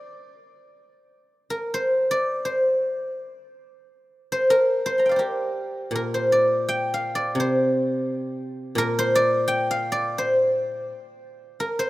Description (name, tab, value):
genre	chinese traditional, Chinese solo plucked strings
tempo	85 BPM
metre	2/4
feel	rubato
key	unclear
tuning	A4 = 440 Hz
part	guzheng	solo	0.0-11.9 s	Bb2 to C6	-21 LUFS	equal	none
room	moderate plate reverb, RT60 3.5 s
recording	rough home demo mix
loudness	-21 LUFS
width	side -17 dB against mid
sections	0.0-5.9 A section; 5.9-11.9 B section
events	none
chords	none